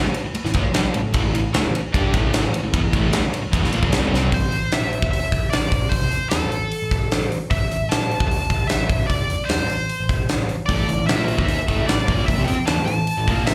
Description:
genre	hard rock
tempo	151 BPM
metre	4/4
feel	straight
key	unclear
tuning	A4 = 435 Hz
part	crunchy overdriven guitar	riff	0.0-4.3, 10.7-13.5 s	A2 to G4	-30 LUFS	equal	none
part	overdriven semi-hollow guitar	riff	0.0-4.3, 10.7-13.5 s	A2 to G4	-30 LUFS	equal	none
part	sludgy distorted guitar	riff	0.0-4.3, 10.7-13.5 s	A2 to G4	-31 LUFS	equal	overdrive, slapback echo
part	vintage muted picked electric bass	bass	0.0-13.5 s	A1 to G2	-27 LUFS	equal	none
part	gated 80s drum kit	drums	0.1-13.5 s	hi-hat, kick drum, ride cymbal, snare drum	-24 LUFS	equal	none
part	nasal lead guitar with a parked wah	melody	4.3-13.5 s	A4 to A5	-27 LUFS	equal	overdrive, slapback echo, tape echo
room	light reverb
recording	live gig heard through the venue's PA, club reverb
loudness	-21 LUFS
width	mono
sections	0.0-4.3 A section; 4.3-13.5 B section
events	drum fill 4.1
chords	0.0 Am; 4.3 A5

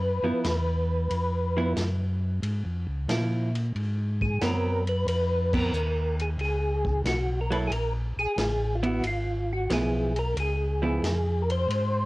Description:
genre	soul jazz organ trio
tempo	91 BPM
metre	4/4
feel	swing 69% on 8ths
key	Db mixolydian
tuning	A4 = 440 Hz
part	percussive tonewheel organ	melody	0.0-12.1 s	F4 to C5	-29 LUFS	equal	slow rotary speaker, overdrive, chorus vibrato, cassette tape
part	mellow tonewheel organ	bass	0.0-12.1 s	Ab1 to Bb2	-27 LUFS	equal	slow rotary speaker
part	vintage hollow-body jazz guitar	accompaniment	0.2-11.0 s	F3 to A4	-29 LUFS	right 2 dB	cassette tape
part	vintage drum kit	drums	0.4-11.9 s	crash cymbal, hi-hat, kick drum, ride cymbal, snare drum	-35 LUFS	equal	cassette tape
room	light reverb, small room ambience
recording	home recording on cassette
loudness	-24 LUFS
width	side -20 dB against mid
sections	0.0-12.1 A section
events	band accent 5.4-5.7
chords	0.0 Db7#9 (rootless); 3.7 Ab7#9; 6.4 Gb7#9; 9.0 Db7#9

